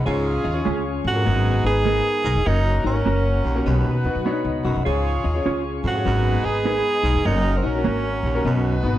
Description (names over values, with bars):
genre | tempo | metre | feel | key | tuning
soul | 100 BPM | 4/4 | swing 64% on 8ths | G# dorian | A4 = 441 Hz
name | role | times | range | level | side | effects
warm concert grand piano | accompaniment | 0.0-9.0 s | G#2 to C#5 | -28 LUFS | left 3 dB | none
percussive tonewheel organ | sustained chords | 0.0-9.0 s | C#5 to C#6 | -33 LUFS | equal | fast rotary speaker
upright bass | bass | 0.0-9.0 s | E#1 to B2 | -22 LUFS | equal | none
warm horn section | second line | 0.1-9.0 s | C#4 to C#5 | -30 LUFS | right 2 dB | none
clear baritone saxophone | riff | 0.1-8.8 s | D#2 to G#2 | -30 LUFS | right 4 dB | none
semi-hollow electric guitar | riff | 0.4-9.0 s | B3 to F#4 | -31 LUFS | left 9 dB | ensemble chorus
mellow electric guitar | stabs | 0.7-8.0 s | G#3 to C#5 | -26 LUFS | right 6 dB | none
breathy tenor saxophone | melody | 1.1-8.8 s | B#3 to G#4 | -23 LUFS | right 3 dB | none
room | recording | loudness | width
light reverb, small room reverb | dark, warm production | -18 LUFS | side -13 dB against mid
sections
0.0-9.0 A section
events
none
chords
0.1 C#; 1.3 G#m; 2.5 F#; 3.7 B; 4.9 C#; 6.1 G#m; 7.3 F#; 8.4 B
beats
| 0.07 0.67 1.26 1.86 | 2.46 3.06 3.66 4.26 | 4.86 5.46 6.05 6.65 | 7.25 7.85 8.45